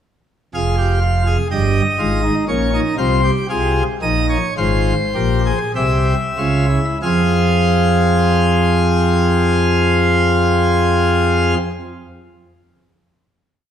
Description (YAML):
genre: classical, baroque-style 3-part fugue for pipe organ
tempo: 45-64 BPM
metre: 3/4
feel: straight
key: F minor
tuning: A4 = 438 Hz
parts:
  - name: pipe organ, plenum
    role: solo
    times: 0.5-11.6 s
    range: F1 to F5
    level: -14 LUFS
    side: equal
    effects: none
room: wet recital hall reverb, RT60 1.6 s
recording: none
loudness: -14 LUFS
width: side -9 dB against mid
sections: 0.5-7.0 exposition; 7.0-11.0 final chord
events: slowing down 0.5-9.0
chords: 0.5 Fm; 2.5 Gdim/Bb; 3.5 Fm; 5.7 C; 7.0 Fm